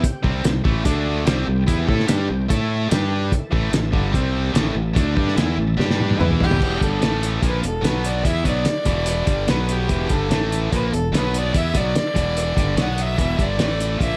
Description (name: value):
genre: classic rock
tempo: 146 BPM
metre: 4/4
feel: straight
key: E minor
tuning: A4 = 440 Hz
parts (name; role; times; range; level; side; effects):
- overdriven tonewheel organ; sustained chords; 0.0-6.6 s; B3 to A5; -39 LUFS; equal; none
- distorted electric guitar; riff; 0.0-14.2 s; E2 to A4; -30 LUFS; equal; overdrive
- tight distorted guitar; riff; 0.0-14.2 s; E2 to A4; -30 LUFS; equal; distortion
- modern bright fingered electric bass; bass; 0.0-14.2 s; E1 to A2; -25 LUFS; equal; none
- cloth-damped thuddy drum kit; drums; 0.0-14.1 s; crash cymbal, hi-hat, kick drum, snare drum, toms; -24 LUFS; equal; none
- warm fiddle; melody; 6.2-14.2 s; G4 to F#5; -28 LUFS; equal; plate reverb
room: light reverb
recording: none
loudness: -20 LUFS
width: mono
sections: 0.0-6.6 A section; 6.6-14.2 B section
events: drum fill 5.8-6.6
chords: 0.0 C5; 0.9 D5; 1.3 C5; 2.5 A5; 2.9 G5; 3.3 A5; 4.1 C5; 4.5 A5; 5.8 G5; 6.2 E5; 6.6 Em; 7.0 A5; 7.4 E5; 7.8 B5; 8.2 Em; 9.5 B5; 9.9 Em; 10.3 A5; 10.7 E5; 11.1 B5; 11.5 Em; 12.8 B5; 13.2 Em; 13.6 A5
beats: | 0.03 0.44 0.85 1.26 | 1.68 2.09 2.50 2.91 | 3.32 3.73 4.14 4.55 | 4.96 5.37 5.78 6.19 | 6.60 7.01 7.42 7.84 | 8.25 8.66 9.07 9.48 | 9.89 10.30 10.71 11.13 | 11.54 11.95 12.36 12.77 | 13.18 13.59 14.00